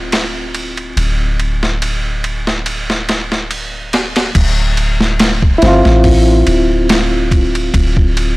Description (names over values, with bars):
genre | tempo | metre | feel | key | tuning
trip hop | 71 BPM | 4/4 | swing 54% on 16ths | D minor | A4 = 440 Hz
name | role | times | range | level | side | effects
reed electric piano | accompaniment | 0.0-8.4 s | C4 to F4 | -15 LUFS | equal | tremolo, tape echo
soft 808-style bass | bass | 0.0-8.4 s | D1 to A1 | -16 LUFS | equal | tube saturation
boom bap sampler-style drum kit | drums | 0.1-8.4 s | crash cymbal, hi-hat, kick drum, ride cymbal, snare drum | -15 LUFS | equal | high-pass filter on snare, small room ambience, high-pass filter on cymbals, high-pass filter on hats, high-pass filter on kick
room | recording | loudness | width
little or no reverb | blown-out, overdriven recording, vinyl crackle, overdrive | -11 LUFS | side -21 dB against mid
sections
0.0-4.4 A section; 4.4-8.4 B section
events
none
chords
0.0 Dm9